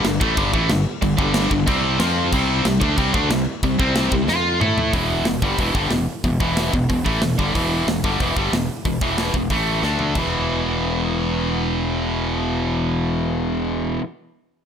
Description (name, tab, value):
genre	heavy metal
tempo	184 BPM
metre	4/4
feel	straight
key	E phrygian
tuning	A4 = 440 Hz
part	tight distorted guitar	riff	0.0-14.0 s	E2 to A4	-20 LUFS	equal	distortion
part	fuzz fingered electric bass	bass	0.0-14.0 s	E1 to A2	-24 LUFS	equal	overdrive
part	tight metal drum kit	drums	0.0-10.2 s	crash cymbal, hi-hat, kick drum, snare drum, toms	-24 LUFS	equal	none
room	small room reverb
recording	none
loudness	-18 LUFS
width	side -8 dB against mid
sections	0.0-4.9 A section; 4.9-10.2 B section; 10.2-12.8 C section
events	drum fill 4.3-4.9, 9.8-10.2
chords	0.0 G5; 1.7 C5; 2.0 F5; 2.3 C5; 4.3 F5; 4.6 A5; 4.9 Em; 9.5 A5; 9.8 D5; 10.2 E5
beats	0.05 0.38 0.70 | 1.03 1.35 1.68 2.01 | 2.33 2.66 2.98 3.31 | 3.63 3.96 4.29 4.61 | 4.94 5.26 5.59 5.92 | 6.24 6.57 6.90 7.22 | 7.55 7.88 8.20 8.53 | 8.86 9.18 9.51 9.84 | 10.16 10.49 10.82 11.14 | 11.47 11.80 12.12 12.45